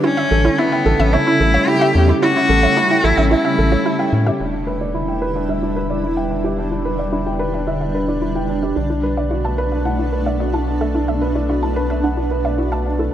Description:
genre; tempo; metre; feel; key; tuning
piano and strings electronica; 110 BPM; 4/4; straight; E dorian; A4 = 440 Hz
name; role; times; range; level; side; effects
rich cello; melody; 0.0-4.1 s; B3 to G4; -18 LUFS; left 1 dB; none
granular cloud pad; sustained chords; 0.0-13.1 s; B2 to E4; -23 LUFS; equal; built-in reverb
analog pluck; arpeggios; 0.0-13.1 s; C#4 to E5; -24 LUFS; right 2 dB; chorus, tape echo
felt-muted upright piano; riff; 0.0-13.1 s; C#4 to A5; -21 LUFS; right 1 dB; low-pass filter, tape echo
round analog bass; bass; 0.3-13.1 s; E1 to A2; -21 LUFS; equal; none
room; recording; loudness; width
moderate lush hall reverb, RT60 2.7 s; none; -15 LUFS; side -11 dB against mid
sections
0.0-4.4 A section; 4.4-13.1 B section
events
drop 0.0-4.4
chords
0.0 A7; 4.4 Em7; 8.8 Bm7

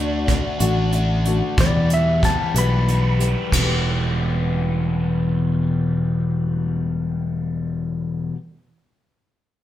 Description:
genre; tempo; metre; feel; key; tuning
folk rock and heartland rock; 62 BPM (dotted quarters); 6/8; straight; E minor; A4 = 440 Hz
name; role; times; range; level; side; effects
clean lap steel guitar; melody; 0.0-3.5 s; D5 to B5; -25 LUFS; equal; none
picked steel-string acoustic guitar; accompaniment; 0.0-8.5 s; E2 to G4; -29 LUFS; left 5 dB; none
crunchy overdriven guitar; riff; 0.0-8.4 s; E2 to G4; -24 LUFS; left 2 dB; phaser
fingered electric bass; bass; 0.0-8.3 s; E1 to E2; -22 LUFS; equal; none
soft brush drum kit; drums; 0.3-3.7 s; hi-hat, kick drum, ride cymbal; -23 LUFS; equal; none
room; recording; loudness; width
moderate large studio reverb, RT60 0.8 s; band playing live in one room; -18 LUFS; side -12 dB against mid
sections
0.0-3.5 A section; 3.5-7.4 B section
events
electric slide guitar solo 0.0-3.5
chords
0.0 D; 1.6 Em

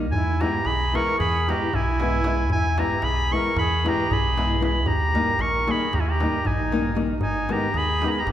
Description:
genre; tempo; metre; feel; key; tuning
balkan folk, Balkan wedding band; 229 BPM (eighths); 9/8; straight; unclear; A4 = 440 Hz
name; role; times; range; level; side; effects
flamenco guitar; accompaniment; 0.0-8.2 s; D#3 to E4; -27 LUFS; left 3 dB; none
deep dub fingered electric bass; bass; 0.0-8.3 s; G#1 to E2; -26 LUFS; equal; none
bright clarinet; melody; 0.1-8.3 s; G#5 to C#6; -25 LUFS; equal; none
clear trumpet; second line; 0.1-8.3 s; D#4 to A#4; -28 LUFS; right 3 dB; none
darbuka; percussion; 0.1-8.3 s; none; -30 LUFS; left 1 dB; none
room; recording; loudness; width
wet concert hall reverb, RT60 2.3 s; recorded in a church or concert hall; -20 LUFS; side -11 dB against mid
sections
0.0-8.3 A section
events
none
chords
0.1 E; 4.8 D#; 7.2 G#m

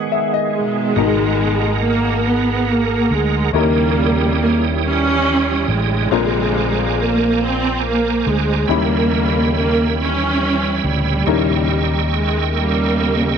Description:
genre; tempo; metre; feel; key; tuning
gospel; 47 BPM (dotted quarters); 6/8; straight; G# harmonic minor; A4 = 441 Hz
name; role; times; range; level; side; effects
clear upright piano; accompaniment; 0.0-13.4 s; G#2 to B5; -23 LUFS; left 14 dB; none
bright tonewheel organ; sustained chords; 0.0-13.4 s; D#3 to E6; -23 LUFS; right 13 dB; slow rotary speaker, overdrive, chorus vibrato
warm studio string section; melody; 0.6-13.4 s; A#2 to C#4; -18 LUFS; right 1 dB; none
fingered electric bass; bass; 1.0-13.4 s; G#1 to D#2; -21 LUFS; equal; none
room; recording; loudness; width
light reverb, studio reverb; 1960s-style stereo with parts hard left and right; -15 LUFS; side -7 dB against mid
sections
1.0-13.4 A section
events
break 0.0-1.0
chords
0.0 G#m; 1.0 G#m9; 3.5 D#7b9; 6.1 A#9; 8.7 D#7b9b13; 11.3 D#7b9

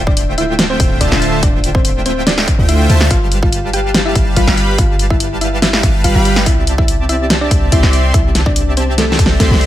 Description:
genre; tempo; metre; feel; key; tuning
future bass; 143 BPM; 4/4; half-time; unclear; A4 = 440 Hz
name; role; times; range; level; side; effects
soft supersaw; riff; 0.0-9.7 s; D3 to C6; -18 LUFS; equal; sidechain pumping
warm 808-style bass; bass; 0.0-9.7 s; D1 to D2; -16 LUFS; equal; sidechain pumping
thumb-piano-like synth pluck; melody; 0.1-9.7 s; A3 to G5; -20 LUFS; left 1 dB; chorus, sidechain pumping, dub echo
electronic kick drum; drums; 0.1-9.5 s; none; -15 LUFS; equal; studio reverb
big-room dance drum kit; drums; 0.2-9.7 s; hi-hat, snare drum; -16 LUFS; equal; studio reverb
room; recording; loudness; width
little or no reverb; none; -10 LUFS; side -13 dB against mid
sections
0.0-9.7 A section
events
drum fill 9.0-9.7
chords
0.0 Dm11; 3.1 G7; 6.5 C69

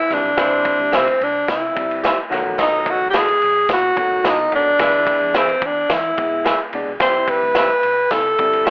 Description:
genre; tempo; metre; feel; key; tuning
uptempo 1960s-style soul; 109 BPM; 4/4; straight; C major; A4 = 438 Hz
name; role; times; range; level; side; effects
breathy tenor saxophone; melody; 0.0-8.7 s; C4 to C5; -16 LUFS; equal; none
warm baby grand piano; accompaniment; 0.1-8.7 s; D#3 to F#4; -26 LUFS; left 1 dB; none
vintage muted fingered electric bass; bass; 0.1-8.7 s; F#1 to E3; -41 LUFS; equal; none
vintage drum kit; drums; 0.1-8.7 s; kick drum, ride cymbal, snare drum; -21 LUFS; equal; none
clear horn section; second line; 0.4-7.4 s; E3 to D#5; -23 LUFS; equal; plate reverb
tambourine; percussion; 0.4-8.7 s; none; -44 LUFS; right 1 dB; none
electric guitar through a small old amp; stabs; 0.9-8.7 s; F#4 to E5; -22 LUFS; right 1 dB; none
room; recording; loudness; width
moderate studio reverb, RT60 0.6 s; telephone sound; -14 LUFS; side -30 dB against mid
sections
0.0-8.7 A section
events
none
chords
0.0 C; 2.3 B7; 4.8 E; 7.0 C

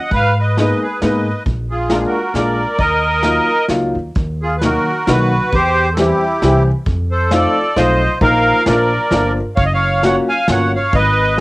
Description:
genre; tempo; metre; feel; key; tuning
musette waltz; 133 BPM; 3/4; swing 53% on 8ths, rubato; Eb minor; A4 = 440 Hz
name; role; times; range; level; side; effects
accordion; melody; 0.0-11.4 s; E4 to Ab5; -16 LUFS; right 1 dB; light tremolo tuning, cassette tape
upright bass; bass; 0.1-11.4 s; Gb1 to Ab2; -19 LUFS; equal; none
vintage brush drum kit; drums; 0.1-11.0 s; hi-hat, kick drum, snare drum; -20 LUFS; equal; cassette tape
warm upright piano; accompaniment; 0.6-11.4 s; Eb3 to Bb4; -17 LUFS; left 1 dB; none
room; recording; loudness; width
moderate studio reverb, RT60 0.6 s; home recording on cassette; -13 LUFS; side -21 dB against mid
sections
0.0-4.2 A section; 4.2-11.4 A section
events
none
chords
0.1 Abmadd9; 1.4 Bb7; 2.8 Ebmadd9; 4.2 Ebm; 5.5 C/E; 6.9 F7; 8.2 Bbsus4; 8.7 Bb; 9.6 Gbmaj7

